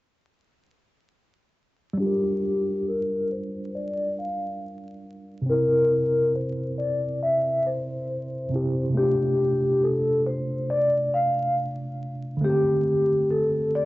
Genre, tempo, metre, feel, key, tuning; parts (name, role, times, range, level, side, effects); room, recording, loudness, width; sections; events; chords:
hip hop; 69 BPM; 4/4; swing 56% on 16ths; G dorian; A4 = 440 Hz
tine electric piano; accompaniment; 1.9-13.9 s; C3 to Bb4; -28 LUFS; right 1 dB; overdrive, fast stereo tremolo, cassette tape, low-pass filter
vibraphone with soft mallets; melody; 2.0-13.9 s; G4 to F5; -23 LUFS; left 1 dB; low-pass filter, cassette tape
moderate small room reverb, RT60 0.6 s; home recording on cassette, vinyl crackle, nothing above 7.9 kHz; -22 LUFS; side -18 dB against mid
2.0-13.9 A section
filter sweep 2.0-13.9
2.0 Gm7; 5.5 C7; 8.9 F6/C; 12.4 D7sus4